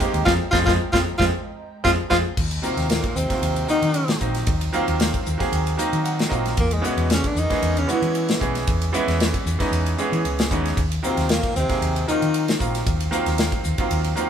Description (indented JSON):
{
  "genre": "electric jazz fusion",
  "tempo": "114 BPM",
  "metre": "4/4",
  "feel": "straight",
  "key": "Eb dorian",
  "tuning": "A4 = 440 Hz",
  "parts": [
    { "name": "bright baby grand piano", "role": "accompaniment", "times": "0.0-14.3 s", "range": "Eb3 to Gb5", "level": "-25 LUFS", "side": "right 2 dB", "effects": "none" },
    { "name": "glassy FM pad", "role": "sustained chords", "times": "0.0-2.3 s", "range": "Ab3 to Bb5", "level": "-38 LUFS", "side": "right 4 dB", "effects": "none" },
    { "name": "modern studio drum kit", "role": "drums", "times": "0.0-14.3 s", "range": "crash cymbal, hi-hat, kick drum, ride cymbal, snare drum", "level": "-25 LUFS", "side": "left 1 dB", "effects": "none" },
    { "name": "mellow fretless electric bass", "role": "bass", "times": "0.1-14.1 s", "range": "Bb1 to E3", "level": "-25 LUFS", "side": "equal", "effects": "none" },
    { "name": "clear tenor saxophone", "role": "melody", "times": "0.3-12.6 s", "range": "G#3 to F4", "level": "-23 LUFS", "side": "equal", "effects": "none" },
    { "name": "breathy tenor saxophone", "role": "second line", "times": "2.7-12.6 s", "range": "G#2 to E3", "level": "-30 LUFS", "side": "left 4 dB", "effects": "none" }
  ],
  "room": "wet studio reverb, RT60 0.9 s",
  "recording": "band playing live in one room",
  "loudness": "-19 LUFS",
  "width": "side -8 dB against mid",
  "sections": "0.0-2.4 A section; 2.4-14.3 B section",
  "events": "band accent 0.3-2.4; drum fill 1.3-2.4; grand piano fill 5.8-6.6",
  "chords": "0.0 Fm11; 2.4 Ebm69; 6.6 E69; 10.8 Ebm69",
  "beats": "| 0.27 0.80 1.32 1.85 | 2.38 2.90 3.43 3.95 | 4.48 5.00 5.53 6.05 | 6.58 7.11 7.63 8.15 | 8.68 9.20 9.73 10.25 | 10.78 11.30 11.82 12.35 | 12.87 13.39 13.91"
}